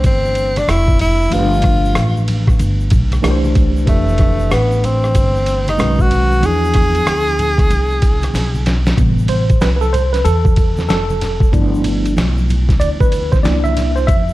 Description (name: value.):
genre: hip hop, jazz-hop.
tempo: 94 BPM.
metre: 4/4.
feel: swing 63% on 16ths.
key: A minor.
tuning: A4 = 440 Hz.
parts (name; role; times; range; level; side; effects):
breathy tenor saxophone; melody; 0.0-8.7 s; A3 to G#4; -18 LUFS; equal; none.
tine electric piano; accompaniment; 0.0-14.3 s; C3 to E5; -20 LUFS; right 1 dB; overdrive, fast stereo tremolo.
upright bass; bass; 0.0-14.3 s; F1 to E2; -17 LUFS; equal; none.
boom bap sampler-style drum kit; drums; 0.0-14.3 s; hi-hat, kick drum, ride cymbal, rim click, snare drum; -17 LUFS; equal; none.
congas and tube shaker; percussion; 0.0-14.3 s; none; -28 LUFS; left 1 dB; none.
room: studio ambience.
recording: vinyl crackle.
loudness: -12 LUFS.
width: side -17 dB against mid.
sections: 0.0-9.0 A section; 9.0-14.3 B section.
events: drum fill 8.3-9.0; tine electric piano solo 9.0-14.3.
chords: 0.0 Am9; 1.3 G9; 3.2 Cadd9; 3.9 Fmaj9#11; 5.8 B69; 6.4 E7b9; 9.0 Am9; 11.5 G13; 13.4 C9.